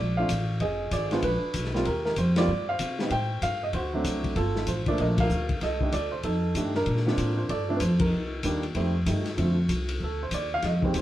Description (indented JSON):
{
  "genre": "jazz piano trio",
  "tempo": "191 BPM",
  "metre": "4/4",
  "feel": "swing 62% on 8ths",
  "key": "unclear",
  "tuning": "A4 = 440 Hz",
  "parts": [
    { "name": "warm upright piano", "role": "melody", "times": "0.0-11.0 s", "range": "D3 to G5", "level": "-28 LUFS", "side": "right 2 dB", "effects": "none" },
    { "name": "upright bass", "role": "bass", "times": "0.0-11.0 s", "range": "F1 to C3", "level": "-28 LUFS", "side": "equal", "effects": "none" },
    { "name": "vintage drum kit", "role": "drums", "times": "0.3-11.0 s", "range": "hi-hat, kick drum, ride cymbal, snare drum", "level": "-32 LUFS", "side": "left 2 dB", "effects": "none" }
  ],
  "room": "moderate stone room reverb, RT60 0.9 s",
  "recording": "band playing live in one room",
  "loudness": "-24 LUFS",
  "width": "side -13 dB against mid",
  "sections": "0.0-9.4 A section; 9.4-11.0 B section",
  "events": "band accent 2.3, 5.1, 8.0; upright piano solo 9.4-11.0",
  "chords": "0.0 Bbmaj7; 0.6 Fm7; 1.2 Bb; 1.9 Eb69; 3.1 Fadd9; 3.7 D7; 4.4 Gm9; 5.6 F13; 6.9 Bbmaj9; 8.1 Cm7; 8.7 F9; 9.4 Cm69"
}